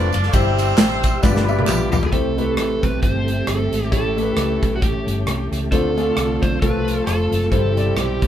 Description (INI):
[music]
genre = uptempo gospel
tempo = 134 BPM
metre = 4/4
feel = swing 56% on 8ths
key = C major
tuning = A4 = 440 Hz
[part]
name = warm horn section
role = melody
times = 0.0-2.1 s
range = B3 to D5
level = -24 LUFS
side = equal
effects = none
[part]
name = clear concert grand piano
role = accompaniment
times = 0.0-8.3 s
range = G2 to E5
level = -24 LUFS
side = left 4 dB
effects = none
[part]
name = mellow tonewheel organ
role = sustained chords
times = 0.0-8.3 s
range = C3 to E6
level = -25 LUFS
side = right 2 dB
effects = fast rotary speaker, chorus vibrato
[part]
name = hollow-body short-scale fingered electric bass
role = bass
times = 0.0-8.3 s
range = F1 to D2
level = -23 LUFS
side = equal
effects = none
[part]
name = modern studio drum kit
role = drums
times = 0.1-8.3 s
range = hi-hat, kick drum, ride cymbal, rim click, snare drum, toms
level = -21 LUFS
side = equal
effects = none
[part]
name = tambourine and handclaps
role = percussion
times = 0.1-2.0 s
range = none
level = -30 LUFS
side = right 3 dB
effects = none
[part]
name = overdriven slide guitar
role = melody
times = 1.7-8.3 s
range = F#4 to C5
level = -24 LUFS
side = right 2 dB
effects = none
[part]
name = dark studio string section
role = sustained chords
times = 2.1-8.3 s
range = C4 to A5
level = -35 LUFS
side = left 1 dB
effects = none
[sound]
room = moderate studio reverb, RT60 0.9 s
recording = band playing live in one room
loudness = -16 LUFS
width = side -10 dB against mid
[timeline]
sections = 0.0-2.1 A section; 2.1-8.3 B section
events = drum fill 1.2-2.1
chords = 0.3 C/G; 1.2 G7; 2.1 C6; 3.9 A7; 5.7 Dm7; 6.6 F/C; 7.5 C/G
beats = | 0.34 0.78 1.23 1.68 | 2.13 2.58 3.02 3.47 | 3.92 4.37 4.82 5.27 | 5.72 6.17 6.62 7.07 | 7.51 7.96